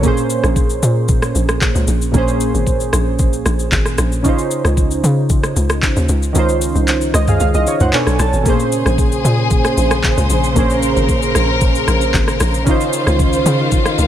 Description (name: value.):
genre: amapiano.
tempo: 114 BPM.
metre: 4/4.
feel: straight.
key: Bb minor.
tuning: A4 = 440 Hz.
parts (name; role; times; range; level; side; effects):
warm analog keys; accompaniment; 0.0-14.1 s; Bb2 to A5; -18 LUFS; right 2 dB; chorus.
hollow log drum bass; bass; 0.0-14.1 s; Ab1 to Db3; -17 LUFS; equal; none.
smooth R&B drum kit; drums; 0.0-14.1 s; handclaps, kick drum, rim click, shaker, toms; -17 LUFS; equal; none.
warm studio string section; sustained chords; 8.5-14.1 s; Db3 to C5; -18 LUFS; left 1 dB; none.
room: little or no reverb.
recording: none.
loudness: -13 LUFS.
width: side -11 dB against mid.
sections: 0.0-14.1 A section.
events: kick muted 6.4-8.5; synth keys fill 6.9-8.5.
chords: 0.0 Bbm9; 4.2 Dbmaj9; 7.9 Bm9; 8.5 Bbm9; 12.7 Dbmaj9.